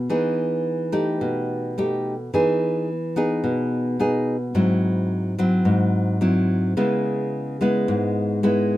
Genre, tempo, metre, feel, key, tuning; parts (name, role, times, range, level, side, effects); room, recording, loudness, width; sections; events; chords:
bossa nova; 108 BPM; 4/4; straight; E major; A4 = 441 Hz
nylon-string guitar; solo; 0.0-8.8 s; G#2 to G#4; -20 LUFS; equal
moderate studio reverb, RT60 0.6 s; minimal, uncompressed stereo recording; -20 LUFS; side -15 dB against mid
0.0-2.3 A section; 2.3-8.8 B section
0.0 Emaj7; 1.2 Baug7; 2.3 Emaj7; 4.6 G#aug7; 6.8 C#m7